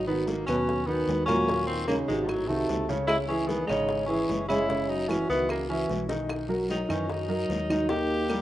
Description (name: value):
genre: Afro-Cuban jazz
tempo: 150 BPM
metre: 4/4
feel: straight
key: G# minor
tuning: A4 = 441 Hz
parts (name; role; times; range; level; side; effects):
- warm tenor saxophone; melody; 0.0-8.4 s; E#3 to G4; -30 LUFS; left 1 dB; none
- breathy trombone; second line; 0.0-8.4 s; G#2 to A#3; -32 LUFS; right 1 dB; none
- hollow-body short-scale fingered electric bass; bass; 0.0-8.4 s; F#1 to F#2; -37 LUFS; equal; none
- warm concert grand piano; accompaniment; 0.1-8.4 s; A#2 to D#5; -29 LUFS; right 1 dB; none
- bongos; percussion; 0.1-8.4 s; none; -41 LUFS; left 4 dB; none
- congas; percussion; 0.1-8.4 s; none; -39 LUFS; left 1 dB; none
- guiro; percussion; 0.3-8.4 s; none; -46 LUFS; left 3 dB; none
- claves; percussion; 0.5-8.4 s; none; -44 LUFS; right 1 dB; none
room: moderate plate reverb, RT60 2.5 s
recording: rough home demo mix, nothing above 10.6 kHz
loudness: -25 LUFS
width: side -14 dB against mid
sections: 0.0-8.4 A section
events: drum fill 6.1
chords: 0.0 G#m9; 1.5 D#m7; 2.3 G#7b9; 3.1 C#madd9; 4.7 F#5; 6.3 Bmaj7; 7.9 D#